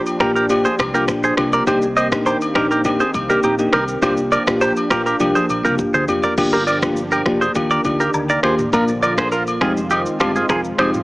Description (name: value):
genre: afrobeats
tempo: 102 BPM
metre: 4/4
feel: straight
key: unclear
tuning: A4 = 440 Hz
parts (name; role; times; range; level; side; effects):
- bell-like FM electric piano; accompaniment; 0.0-11.0 s; Ab3 to Bb4; -20 LUFS; left 1 dB; chorus
- warm analog pad; sustained chords; 0.0-11.0 s; D3 to G4; -24 LUFS; equal; chorus, sidechain pumping
- afro-pop drum kit; drums; 0.1-11.0 s; crash cymbal, finger snaps, kick drum, rim click, shaker, toms; -24 LUFS; equal; none
- agogo bells and woodblock; percussion; 0.1-10.9 s; none; -26 LUFS; left 1 dB; none
- direct-recorded clean electric guitar; riff; 0.2-10.9 s; D4 to Eb5; -19 LUFS; right 1 dB; phaser, tape echo
- fingered electric bass; bass; 0.2-11.0 s; F1 to Eb2; -29 LUFS; equal; none
room: light reverb, digital ambience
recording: small speaker sound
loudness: -15 LUFS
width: side -20 dB against mid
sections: 0.0-6.4 A section; 6.4-11.0 B section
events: drum fill 5.2-6.4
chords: 0.0 Gm7; 1.7 Cm7; 4.0 Gm7; 7.6 Ebmaj7; 8.7 Bb; 9.6 Fm7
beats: 0.50 1.08 | 1.67 2.26 2.85 3.44 | 4.03 4.61 5.20 5.79 | 6.38 6.97 7.55 8.14 | 8.73 9.32 9.91 10.50